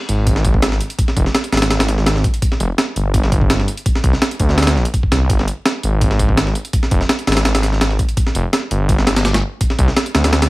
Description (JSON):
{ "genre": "drum and bass, jungle", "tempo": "167 BPM", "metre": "4/4", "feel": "straight", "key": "unclear", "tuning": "A4 = 440 Hz", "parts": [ { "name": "detuned saw bass", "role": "bass", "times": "0.1-10.5 s", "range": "F1 to D2", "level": "-16 LUFS", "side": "equal", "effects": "tube saturation" }, { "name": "breakbeat sampler-style drum kit", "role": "drums", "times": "0.1-10.5 s", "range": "hi-hat, kick drum, snare drum", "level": "-16 LUFS", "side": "equal", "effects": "studio reverb" } ], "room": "studio reverb", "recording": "vinyl crackle", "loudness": "-14 LUFS", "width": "side -20 dB against mid", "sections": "0.0-10.5 A section", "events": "none", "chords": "none" }